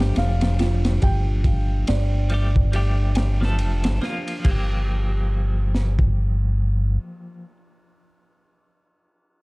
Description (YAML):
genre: trip hop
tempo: 70 BPM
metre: 4/4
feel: swing 60% on 16ths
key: G minor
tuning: A4 = 440 Hz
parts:
  - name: felt-muted upright piano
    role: melody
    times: 0.0-3.6 s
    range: F5 to G5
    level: -35 LUFS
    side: right 1 dB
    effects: tape echo
  - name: clean electric guitar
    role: accompaniment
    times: 0.0-7.6 s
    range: F3 to A4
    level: -31 LUFS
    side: equal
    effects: tremolo
  - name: dark analog pad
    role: sustained chords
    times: 0.0-4.5 s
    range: D4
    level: -36 LUFS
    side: left 1 dB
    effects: chorus
  - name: music box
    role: arpeggios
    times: 0.0-4.8 s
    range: F4 to G5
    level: -35 LUFS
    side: right 4 dB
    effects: vintage 12-bit sampler grit, tape echo
  - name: round analog bass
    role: bass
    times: 0.0-7.0 s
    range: F1 to G1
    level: -20 LUFS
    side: equal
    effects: tube saturation
  - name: crunchy breakbeat drum kit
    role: drums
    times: 0.0-6.1 s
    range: crash cymbal, kick drum, ride cymbal, snare drum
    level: -24 LUFS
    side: equal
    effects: none
room: studio ambience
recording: dark, warm production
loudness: -19 LUFS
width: side -26 dB against mid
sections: 0.0-4.4 A section; 4.4-7.9 B section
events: none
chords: 0.0 Fadd9; 4.4 Gm7